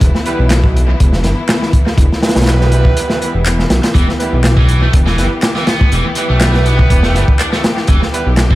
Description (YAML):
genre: breakbeat, breaks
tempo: 122 BPM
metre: 4/4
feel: swing 54% on 16ths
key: E minor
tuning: A4 = 441 Hz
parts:
  - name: rich studio string section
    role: sustained chords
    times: 0.0-8.6 s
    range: E3 to G4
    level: -21 LUFS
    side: left 2 dB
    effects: sidechain pumping
  - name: dark detuned saw bass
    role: bass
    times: 0.0-8.6 s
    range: E1 to B1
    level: -13 LUFS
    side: equal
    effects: tube saturation
  - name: crunchy breakbeat drum kit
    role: drums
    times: 0.0-8.6 s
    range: hi-hat, kick drum, snare drum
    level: -13 LUFS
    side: equal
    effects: dub echo
  - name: warm horn section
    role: stabs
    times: 0.3-8.3 s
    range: G3 to B4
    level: -22 LUFS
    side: right 4 dB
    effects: dub echo
  - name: electronic handclaps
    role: drums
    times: 0.5-8.5 s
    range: none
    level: -26 LUFS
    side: equal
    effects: none
  - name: scooped high-gain guitar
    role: riff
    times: 3.9-8.6 s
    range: E3 to D4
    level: -20 LUFS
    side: right 1 dB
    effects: distortion, tube saturation, dub echo
room: small room reverb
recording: echo-heavy mix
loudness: -10 LUFS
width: side -17 dB against mid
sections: 0.0-8.6 A section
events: break 3.0-3.9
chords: 0.0 Em